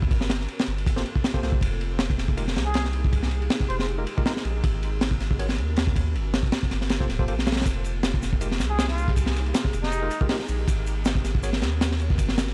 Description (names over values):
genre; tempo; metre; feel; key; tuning
drum and bass, jungle; 159 BPM; 4/4; straight; unclear; A4 = 440 Hz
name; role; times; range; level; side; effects
ethereal airy pad; sustained chords; 0.0-12.5 s; Bb3 to Bb4; -39 LUFS; equal; ensemble chorus, built-in reverb, tremolo, vintage 12-bit sampler grit
soft dub sub bass; bass; 0.0-12.5 s; D1 to Eb2; -29 LUFS; equal; none
crunchy breakbeat drum kit; drums; 0.0-12.5 s; kick drum, ride cymbal, snare drum; -27 LUFS; equal; none
bright tine electric piano; stabs; 1.0-11.5 s; Ab3 to Db5; -39 LUFS; equal; dub echo
trumpet with plunger mute; melody; 2.7-3.9, 8.7-10.2 s; Eb4 to C5; -36 LUFS; equal; dub echo
crunchy breakbeat drum kit; drums; 7.7-12.5 s; hi-hat, shaker, snare drum; -42 LUFS; equal; high-pass filter on hats, high-pass filter on snare, high-pass filter on perc, high-pass filter on room
room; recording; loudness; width
little or no reverb; dry, gritty hardware recording, cassette tape; -25 LUFS; mono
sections
0.0-12.5 A section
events
none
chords
0.1 Gm11; 1.6 Fm11; 4.6 Abm11; 6.1 Gm11; 7.7 Fm11; 10.7 Abm11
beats
| 0.11 0.49 0.86 1.24 | 1.62 2.00 2.37 2.75 | 3.13 3.51 3.88 4.26 | 4.64 5.02 5.39 5.77 | 6.15 6.53 6.90 7.28 | 7.66 8.04 8.41 8.79 | 9.17 9.54 9.92 10.30 | 10.68 11.05 11.43 11.81 | 12.19